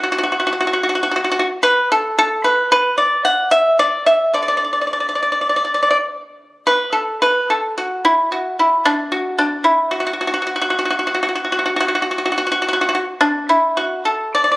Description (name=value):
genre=chinese traditional, Chinese solo plucked strings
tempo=50-56 BPM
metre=2/4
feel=rubato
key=D gong mode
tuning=A4 = 438 Hz
part: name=pipa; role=solo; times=0.0-14.6 s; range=A2 to F#5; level=-14 LUFS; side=equal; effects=none
room=moderate recital hall reverb, RT60 1.5 s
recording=recorded on a phone in the room, club reverb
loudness=-15 LUFS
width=side -20 dB against mid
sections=0.0-6.7 A section; 6.7-14.6 B section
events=none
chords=none